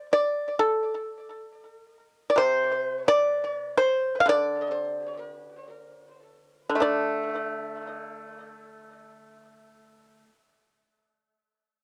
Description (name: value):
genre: chinese traditional, Chinese solo plucked strings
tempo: 41-68 BPM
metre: 2/4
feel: rubato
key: unclear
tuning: A4 = 440 Hz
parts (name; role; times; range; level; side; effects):
- pipa; solo; 0.0-10.3 s; C3 to F5; -26 LUFS; equal; cassette tape, tape echo
room: moderate small room reverb, RT60 0.5 s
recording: home recording on cassette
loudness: -26 LUFS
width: mono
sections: 0.0-6.8 A section; 6.8-11.8 B section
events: slowing down 2.4-6.8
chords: none